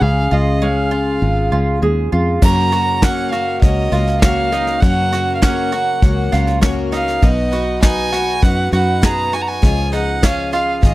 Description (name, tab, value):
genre	indie folk with a building arrangement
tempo	100 BPM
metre	4/4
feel	straight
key	F# major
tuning	A4 = 440 Hz
part	warm fiddle	melody	0.0-10.9 s	D#5 to A#5	-20 LUFS	right 2 dB	none
part	fingerpicked steel-string acoustic guitar	accompaniment	0.0-2.4 s	G#2 to G#4	-20 LUFS	left 2 dB	none
part	fingered electric bass	bass	0.0-10.9 s	G#1 to F#2	-19 LUFS	equal	none
part	mandolin	arpeggios	0.3-10.9 s	C#4 to G#4	-23 LUFS	right 4 dB	none
part	picked twelve-string acoustic guitar	accompaniment	2.4-10.9 s	F#2 to D#5	-24 LUFS	left 4 dB	none
part	warm upright piano	accompaniment	2.4-10.9 s	F#1 to D#5	-25 LUFS	left 4 dB	none
part	soft brush drum kit	drums	2.4-10.9 s	crash cymbal, kick drum, snare drum	-14 LUFS	equal	none
room	small room ambience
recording	dry, close 1970s-style studio recording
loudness	-13 LUFS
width	side -18 dB against mid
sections	0.0-2.4 A section; 2.4-10.9 B section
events	none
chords	0.0 C#; 2.4 F#; 7.2 B; 9.6 C#add9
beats	| 0.02 0.62 1.22 1.82 | 2.42 3.02 3.62 4.22 | 4.83 5.43 6.03 6.63 | 7.23 7.83 8.43 9.03 | 9.63 10.23 10.83